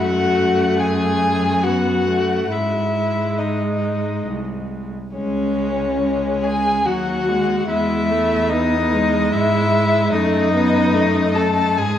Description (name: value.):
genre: classical, slow romantic movement for string quartet.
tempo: 68-75 BPM.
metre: 3/4.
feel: rubato.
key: C# minor.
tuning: A4 = 439 Hz.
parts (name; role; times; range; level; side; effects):
clear violin; melody; 0.0-12.0 s; C#5 to A5; -23 LUFS; left 5 dB; none.
clear violin; second line; 0.0-12.0 s; C#4 to A4; -21 LUFS; left 1 dB; none.
rich viola; accompaniment; 0.0-12.0 s; F#3 to B3; -22 LUFS; right 1 dB; none.
clear cello; bass; 0.0-12.0 s; B#1 to G#2; -23 LUFS; right 1 dB; none.
room: moderate scoring stage reverb, RT60 2.0 s.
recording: worn, warbling old tape, cassette tape, warbly pitch drift.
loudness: -16 LUFS.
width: side -10 dB against mid.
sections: 0.0-12.0 A section.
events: none.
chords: 0.0 F#madd9; 2.5 G#; 5.1 C#5; 7.7 E; 10.1 D#dim/F#.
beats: | 0.01 0.82 1.64 | 2.51 3.39 4.26 | 5.15 6.01 6.86 | 7.69 8.51 9.33 | 10.14 10.95 11.78.